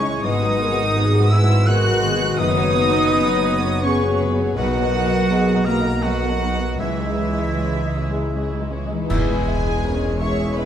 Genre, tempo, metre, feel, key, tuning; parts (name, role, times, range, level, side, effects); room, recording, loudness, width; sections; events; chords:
cinematic, emotional film score for orchestra; 77-85 BPM; 3/4; rubato; A4 = 440 Hz
warm symphonic violin section; melody; 0.0-10.7 s; E5 to F#6; -28 LUFS; equal
flute section; second line; 0.0-10.7 s; B4 to F#6; -30 LUFS; right 1 dB
warm oboe; second line; 0.0-9.4 s; E4 to F#5; -28 LUFS; right 1 dB
warm symphonic violin section; second line; 0.0-10.7 s; B3 to C#5; -32 LUFS; left 2 dB
dark studio viola section; accompaniment; 0.0-10.7 s; E3 to E4; -29 LUFS; right 1 dB
warm baby grand piano; accompaniment; 0.0-10.7 s; B1 to E5; -27 LUFS; left 2 dB
warm French horn section; sustained chords; 0.0-10.7 s; G#3 to B4; -26 LUFS; left 3 dB
concert harp; arpeggios; 0.0-10.7 s; F#2 to D#6; -28 LUFS; left 6 dB
dark studio double bass section; bass; 0.0-10.7 s; E1 to C#2; -23 LUFS; right 1 dB
warm symphonic cello section; bass; 0.0-10.7 s; E2 to F#4; -25 LUFS; right 3 dB
clear clarinet; second line; 9.1-9.4 s; E4; -28 LUFS; equal
clash cymbals and concert bass drum; percussion; 9.1-10.5 s; -25 LUFS; right 1 dB
wet stone room reverb, RT60 1.0 s; dark, warm production; -17 LUFS; side -9 dB against mid
0.0-9.1 A section; 9.1-10.7 B section
band accent 9.1-9.8
0.2 G#m7; 2.4 F#sus4; 4.6 Bmaj7; 6.8 C#madd9; 9.1 E